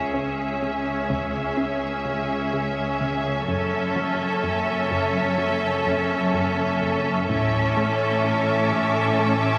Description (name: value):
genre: cinematic, suspense film score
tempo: 63 BPM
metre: 4/4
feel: straight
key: C# phrygian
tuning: A4 = 440 Hz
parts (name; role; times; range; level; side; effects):
- clear studio violin section; melody; 0.0-9.6 s; E5; -32 LUFS; equal; none
- warm studio violin section; second line; 0.0-9.6 s; G#4 to A4; -30 LUFS; equal; none
- rich studio viola section; accompaniment; 0.0-9.6 s; C#4; -28 LUFS; equal; none
- clear studio cello section; bass; 0.0-9.6 s; C#2 to A2; -33 LUFS; equal; none
- rich studio double bass section; bass; 0.0-9.6 s; F#1 to C#2; -33 LUFS; equal; none
- rich studio violin section; texture; 0.0-9.6 s; C#6 to G#6; -37 LUFS; equal; none
- plucky analog bass; riff; 0.1-9.5 s; F#2 to C#4; -34 LUFS; equal; none
- taiko ensemble; drums; 1.1-1.5, 7.3-9.2 s; none; -38 LUFS; equal; none
room: wet scoring stage reverb, RT60 1.5 s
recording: vinyl crackle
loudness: -23 LUFS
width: mono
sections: 0.0-9.6 A section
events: band accent 0.0-0.6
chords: 0.0 C#m; 3.5 F#m7; 7.3 A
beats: 0.62 1.57 2.52 | 3.48 4.43 5.38 6.33 | 7.29 8.24 9.19